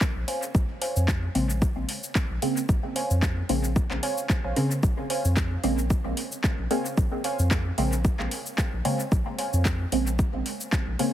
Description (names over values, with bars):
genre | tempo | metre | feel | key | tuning
dub techno | 112 BPM | 4/4 | swing 55% on 16ths | Bb minor | A4 = 440 Hz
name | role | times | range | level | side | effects
deep house drum kit | drums | 0.0-11.1 s | handclaps, hi-hat, shaker | -33 LUFS | left 1 dB | overdrive, dub echo
electronic kick drum | drums | 0.0-10.8 s | none | -25 LUFS | equal | overdrive
warm sub bass | bass | 0.2-11.0 s | Bb1 to F2 | -27 LUFS | equal | sidechain pumping
warbly dusty pluck | riff | 0.3-11.1 s | C5 to Ab5 | -34 LUFS | right 2 dB | chorus, sidechain pumping, dub echo
filtered dub chord stab | stabs | 1.4-11.1 s | Db3 to C4 | -30 LUFS | right 1 dB | phaser, sidechain pumping, dub echo
room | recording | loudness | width
little or no reverb | heavily compressed radio sound, multiband compression | -23 LUFS | side -12 dB against mid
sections
0.0-11.1 A section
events
none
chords
0.0 Bbm9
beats
0.01 | 0.55 1.08 1.62 2.15 | 2.69 3.23 3.76 4.30 | 4.83 5.37 5.90 6.44 | 6.97 7.51 8.05 8.58 | 9.12 9.65 10.19 10.72